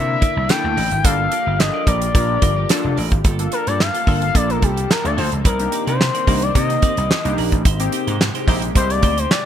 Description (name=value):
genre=early-eighties boogie funk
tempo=109 BPM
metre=4/4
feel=straight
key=G minor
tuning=A4 = 440 Hz
part: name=expressive portamento lead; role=melody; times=0.0-9.5 s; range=G4 to G5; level=-22 LUFS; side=left 4 dB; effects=chorus
part: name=chorused polysynth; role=accompaniment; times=0.0-9.1 s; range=Bb3 to Bb4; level=-25 LUFS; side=equal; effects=none
part: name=string machine, full ensemble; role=sustained chords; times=0.0-9.5 s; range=C3 to A4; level=-29 LUFS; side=equal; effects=phaser, ensemble chorus
part: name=vintage slap bass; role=bass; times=0.0-9.2 s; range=F1 to C3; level=-22 LUFS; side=equal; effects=none
part: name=clean electric guitar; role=riff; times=0.1-9.3 s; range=Bb3 to D5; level=-30 LUFS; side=right 7 dB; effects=wide subtle chorus
part: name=damped 70s drum kit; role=drums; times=0.2-9.4 s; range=handclaps, hi-hat, kick drum, snare drum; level=-18 LUFS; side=right 1 dB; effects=none
room=light reverb, small room reverb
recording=bright 1980s-style digital production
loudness=-15 LUFS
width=side -10 dB against mid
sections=0.0-3.2 A section; 3.2-9.5 B section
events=analog synth lead solo 3.2-9.5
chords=0.0 C9; 1.0 Gm7; 3.2 Gm9; 5.5 Cm9; 7.7 Abmaj7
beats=0.50 | 1.05 1.60 2.15 2.70 | 3.25 3.80 4.35 4.90 | 5.45 6.00 6.55 7.10 | 7.65 8.20 8.75 9.30